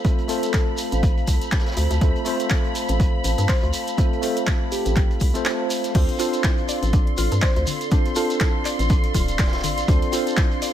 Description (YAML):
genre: deep house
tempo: 122 BPM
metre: 4/4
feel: swing 57% on 16ths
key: D dorian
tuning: A4 = 440 Hz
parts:
  - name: warbly tape-like pad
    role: sustained chords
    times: 0.0-10.7 s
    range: A4 to C6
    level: -31 LUFS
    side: equal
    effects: chorus, built-in reverb, sidechain pumping
  - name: tine electric piano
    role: stabs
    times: 0.0-10.7 s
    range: A3 to C5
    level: -27 LUFS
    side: right 1 dB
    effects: overdrive, fast stereo tremolo, sidechain pumping, tape echo
  - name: electronic kick drum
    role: drums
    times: 0.0-10.5 s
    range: none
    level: -20 LUFS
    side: equal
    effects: overdrive
  - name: punchy analog drum machine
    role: drums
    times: 0.0-10.7 s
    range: crash cymbal, handclaps, hi-hat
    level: -29 LUFS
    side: left 1 dB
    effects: overdrive
  - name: shekere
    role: percussion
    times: 0.0-10.7 s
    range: none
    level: -33 LUFS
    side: right 2 dB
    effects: none
  - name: warm studio violin section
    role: texture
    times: 0.0-10.7 s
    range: B5 to C6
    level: -33 LUFS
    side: equal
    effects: none
  - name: vintage drum kit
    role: drums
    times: 0.1-10.7 s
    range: hi-hat, snare drum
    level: -38 LUFS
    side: equal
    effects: none
  - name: soft struck synth lead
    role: melody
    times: 0.3-8.7 s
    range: G4 to C5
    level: -32 LUFS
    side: left 2 dB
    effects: chorus, tape echo
  - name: hollow knocking FM bass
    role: bass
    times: 0.9-10.0 s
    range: D1 to G2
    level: -23 LUFS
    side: equal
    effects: sidechain pumping
  - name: mallet-like synth pluck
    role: arpeggios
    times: 5.9-10.7 s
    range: D3 to D5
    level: -32 LUFS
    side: left 3 dB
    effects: chorus, sidechain pumping, tape echo
room: small room ambience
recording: none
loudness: -18 LUFS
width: side -11 dB against mid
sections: 0.0-5.9 A section; 5.9-10.7 B section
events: break 5.5-5.9; drop 5.9-10.7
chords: 0.0 F; 5.9 Dm7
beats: | 0.05 0.54 1.03 1.52 | 2.01 2.51 3.00 3.49 | 3.98 4.47 4.96 5.46 | 5.95 6.44 6.93 7.42 | 7.92 8.41 8.90 9.39 | 9.88 10.38